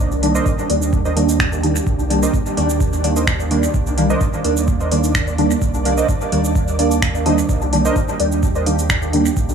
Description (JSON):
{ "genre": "dub techno", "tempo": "128 BPM", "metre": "4/4", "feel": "straight", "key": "unclear", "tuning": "A4 = 440 Hz", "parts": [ { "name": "pure sine sub bass", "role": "bass", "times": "0.0-9.5 s", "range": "C2 to Eb2", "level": "-22 LUFS", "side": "right 1 dB", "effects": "sidechain pumping" }, { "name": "flickering grainy texture", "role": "texture", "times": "0.0-9.5 s", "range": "D4 to D5", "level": "-28 LUFS", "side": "right 2 dB", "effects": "built-in reverb, sidechain pumping" }, { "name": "booming analog drum machine", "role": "drums", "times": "0.1-9.5 s", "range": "finger snaps, hi-hat, shaker", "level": "-24 LUFS", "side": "right 2 dB", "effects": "overdrive, dub echo" }, { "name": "deep mellow chord stab", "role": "stabs", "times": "0.2-9.3 s", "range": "Eb3 to D4", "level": "-18 LUFS", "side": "right 1 dB", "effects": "chorus, phaser, sidechain pumping, dub echo" }, { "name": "warbly lo-fi synth keys", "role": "riff", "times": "0.3-8.6 s", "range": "D4 to Eb5", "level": "-26 LUFS", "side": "right 5 dB", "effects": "chorus, sidechain pumping, dub echo" }, { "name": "electronic kick drum", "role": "drums", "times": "0.5-9.5 s", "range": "none", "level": "-20 LUFS", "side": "equal", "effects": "overdrive" } ], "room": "light reverb", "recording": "studio reverb", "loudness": "-15 LUFS", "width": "side -7 dB against mid", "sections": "0.0-9.5 A section", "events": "none", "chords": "0.0 Cm9" }